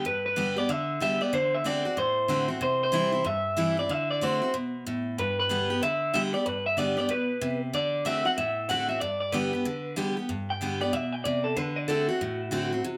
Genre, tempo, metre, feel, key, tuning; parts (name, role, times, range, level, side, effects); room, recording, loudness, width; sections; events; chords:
rock; 188 BPM; 4/4; swing 63% on 8ths; G major; A4 = 439 Hz
picked steel-string acoustic guitar; accompaniment; 0.0-13.0 s; G2 to G4; -32 LUFS; equal
electric guitar through a small old amp; melody; 0.1-13.0 s; F#4 to G5; -30 LUFS; equal; tape echo
moderate studio reverb, RT60 0.6 s; -28 LUFS; mono
0.1-10.3 A section; 10.3-13.0 B section
clean electric guitar solo 10.3-13.0
0.1 G; 1.3 D7; 2.6 C; 3.9 D7; 5.2 G; 7.7 D7; 9.0 G; 11.6 D7